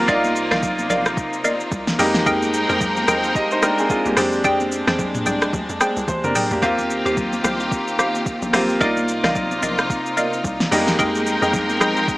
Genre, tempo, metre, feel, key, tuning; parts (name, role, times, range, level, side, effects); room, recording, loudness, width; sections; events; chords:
amapiano; 110 BPM; 4/4; swing 58% on 16ths; A4 = 440 Hz
clear grand piano; accompaniment; 0.0-12.2 s; G3 to Eb5; -21 LUFS; equal
warm studio string section; sustained chords; 0.0-12.2 s; C3 to G5; -24 LUFS; equal; sidechain pumping
hollow square pluck; stabs; 0.0-12.0 s; G4 to G5; -23 LUFS; equal; chorus, phaser, digital delay
tight log drum bass; bass; 0.0-12.1 s; Bb1 to F2; -31 LUFS; equal
smooth R&B drum kit; drums; 0.1-12.2 s; hi-hat, kick drum, rim click, shaker, snare drum, toms; -24 LUFS; equal; overdrive
congas; percussion; 0.2-12.0 s; -31 LUFS; left 2 dB
light reverb; small speaker sound; -17 LUFS; side -19 dB against mid
0.0-12.2 A section
drum fill 6.1-6.6
0.1 Cm11; 2.0 Fm11; 4.2 Bb13; 6.6 Eb69; 8.8 Cm11; 10.7 Fm11